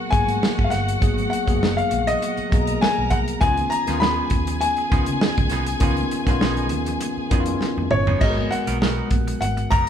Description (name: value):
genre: lush 1970s-style soul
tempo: 100 BPM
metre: 4/4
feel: swing 54% on 16ths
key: unclear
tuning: A4 = 440 Hz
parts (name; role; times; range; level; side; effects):
- clear baby grand piano; melody; 0.0-9.9 s; C#5 to B5; -24 LUFS; left 2 dB; none
- dark studio string section; second line; 0.0-8.2 s; F#4 to A#5; -30 LUFS; left 1 dB; none
- tine electric piano; accompaniment; 0.0-9.9 s; D#3 to A#4; -26 LUFS; left 1 dB; none
- vintage muted fingered electric bass; bass; 0.1-9.8 s; F#1 to C#3; -27 LUFS; equal; none
- warm soul drum kit; drums; 0.1-9.9 s; crash cymbal, hi-hat, kick drum, snare drum, toms; -22 LUFS; right 1 dB; none
- congas; percussion; 0.3-9.6 s; none; -36 LUFS; equal; none
- twangy electric guitar; riff; 3.4-9.9 s; E#3 to A#4; -32 LUFS; right 6 dB; none
room: moderate large studio reverb, RT60 1.2 s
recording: band playing live in one room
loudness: -18 LUFS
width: side -9 dB against mid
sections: 0.0-8.2 A section; 8.2-9.9 B section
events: drum fill 7.6-8.2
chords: 0.0 G#m9; 3.4 C#9; 8.2 G#m9